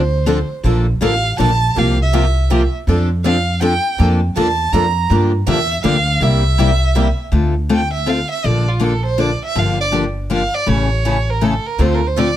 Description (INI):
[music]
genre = acoustic string swing (jazz manouche)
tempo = 161 BPM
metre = 3/4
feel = swing 61% on 8ths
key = D minor from 7.3 s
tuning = A4 = 440 Hz
[part]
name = warm violin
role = melody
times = 0.0-12.4 s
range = F4 to Bb5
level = -20 LUFS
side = right 3 dB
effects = none
[part]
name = upright bass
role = bass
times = 0.0-12.4 s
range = G1 to G2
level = -17 LUFS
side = equal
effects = none
[part]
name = picked steel-string acoustic guitar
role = accompaniment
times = 0.3-12.3 s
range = C3 to A4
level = -18 LUFS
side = left 4 dB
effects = none
[part]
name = picked swing-style acoustic guitar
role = accompaniment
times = 0.3-7.1, 11.8-12.3 s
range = C3 to A4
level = -24 LUFS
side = right 8 dB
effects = none
[sound]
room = light reverb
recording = close, detailed microphones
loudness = -14 LUFS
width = side -12 dB against mid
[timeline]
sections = 0.0-7.3 A section; 7.3-12.4 B section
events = violin solo 7.3-12.4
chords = 0.0 Dm7; 0.6 Bbmaj7; 1.8 C7sus4; 2.9 F69; 4.0 Bbmaj7; 5.1 Gm7; 6.2 C7; 7.3 Dm7; 8.4 Bbmaj7; 9.6 Gm7; 10.7 A; 11.8 Dm7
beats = 0.26 | 0.64 1.01 1.38 | 1.75 2.12 2.49 | 2.87 3.24 3.61 | 3.98 4.35 4.72 | 5.10 5.47 5.84 | 6.21 6.58 6.95 | 7.33 7.70 8.07 | 8.44 8.81 9.19 | 9.56 9.93 10.30 | 10.68 11.05 11.42 | 11.79 12.16